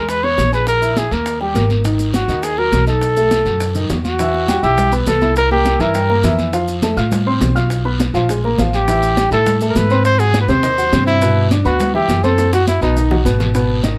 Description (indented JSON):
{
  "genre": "Afro-Cuban jazz",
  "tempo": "205 BPM",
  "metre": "4/4",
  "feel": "straight",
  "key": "unclear",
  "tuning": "A4 = 441 Hz",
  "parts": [
    { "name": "warm trumpet", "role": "melody", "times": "0.0-6.4, 8.7-13.2 s", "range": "D#4 to C#5", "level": "-19 LUFS", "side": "equal", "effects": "none" },
    { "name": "warm grand piano", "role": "accompaniment", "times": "0.0-14.0 s", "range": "B2 to F6", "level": "-22 LUFS", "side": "equal", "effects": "none" },
    { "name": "upright bass", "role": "bass", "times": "0.0-13.9 s", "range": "G#1 to A2", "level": "-21 LUFS", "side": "equal", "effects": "none" },
    { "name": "bongos", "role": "percussion", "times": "0.1-14.0 s", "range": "none", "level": "-29 LUFS", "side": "equal", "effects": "none" },
    { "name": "congas", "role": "percussion", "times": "0.1-14.0 s", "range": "none", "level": "-25 LUFS", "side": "equal", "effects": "none" },
    { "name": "guiro", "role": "percussion", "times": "0.1-14.0 s", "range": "none", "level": "-33 LUFS", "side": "equal", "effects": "none" },
    { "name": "maracas", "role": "percussion", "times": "0.1-14.0 s", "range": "none", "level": "-37 LUFS", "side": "equal", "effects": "none" }
  ],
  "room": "light reverb",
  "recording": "none",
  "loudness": "-15 LUFS",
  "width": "mono",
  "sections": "0.0-4.2 A section; 4.2-13.5 B section",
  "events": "drum fill 12.4-13.5",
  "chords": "0.0 E; 0.7 Emaj7#11/A#; 1.3 D#; 1.8 G#m7; 3.0 B7; 4.2 Emadd9; 5.4 C7; 6.5 F; 7.7 A#5; 8.9 Am9; 10.1 G#7; 11.2 G6; 12.4 B7b9; 13.0 B",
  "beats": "0.09 0.38 | 0.68 0.97 1.26 1.55 | 1.85 2.14 2.43 2.73 | 3.02 3.31 3.60 3.90 | 4.19 4.49 4.78 5.07 | 5.37 5.66 5.95 6.25 | 6.54 6.83 7.12 7.42 | 7.71 8.00 8.30 8.59 | 8.88 9.17 9.47 9.76 | 10.05 10.34 10.63 10.93 | 11.22 11.51 11.80 12.09 | 12.38 12.68 12.97 13.26 | 13.55 13.84"
}